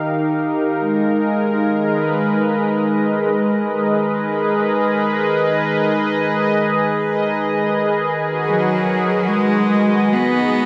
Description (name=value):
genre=ambient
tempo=free time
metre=none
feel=none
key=unclear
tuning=A4 = 439 Hz
part: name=warm analog pad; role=sustained chords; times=0.0-10.7 s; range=Eb3 to F5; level=-19 LUFS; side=equal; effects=chorus
part: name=overtone-sweeping drone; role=drone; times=0.0-10.7 s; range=Eb3 to Eb4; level=-28 LUFS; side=equal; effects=chorus, built-in reverb, phaser
part: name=rich cello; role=melody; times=8.5-10.7 s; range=F#3 to B3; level=-19 LUFS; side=equal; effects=diffuse ambient delay
room=wet cathedral reverb, RT60 5.2 s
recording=dark, warm production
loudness=-18 LUFS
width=mono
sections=0.0-10.7 A section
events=fade-out on synth drone 0.0-10.7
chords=0.0 Ebadd9; 0.8 Abmadd9; 7.6 B6/D#